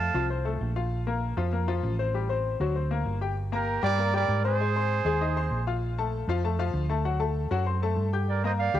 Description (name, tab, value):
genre	latin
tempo	196 BPM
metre	4/4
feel	straight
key	G minor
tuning	A4 = 440 Hz
part	clear trumpet section	melody	0.0-0.3, 3.5-5.6, 8.3-8.8 s	G4 to A5	-29 LUFS	right 6 dB	cassette tape
part	bright baby grand piano	accompaniment	0.0-8.8 s	F3 to G6	-30 LUFS	left 7 dB	cassette tape
part	hollow-body short-scale fingered electric bass	bass	0.0-8.8 s	G1 to Ab2	-28 LUFS	right 1 dB	none
room	light reverb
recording	home recording on cassette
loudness	-25 LUFS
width	side -12 dB against mid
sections	0.0-3.4 A section; 3.4-8.8 A section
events	none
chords	0.0 F; 0.9 Bbsus2; 2.1 Am7; 2.8 Gmadd11; 4.6 Abadd9; 5.8 Bbmaj7; 7.1 D7; 8.3 Gm7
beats	0.00 0.30 0.61 | 0.92 1.22 1.53 1.84 | 2.14 2.45 2.76 3.06 | 3.37 3.68 3.98 4.29 | 4.60 4.90 5.21 5.52 | 5.82 6.13 6.44 6.75 | 7.05 7.36 7.67 7.97 | 8.28 8.59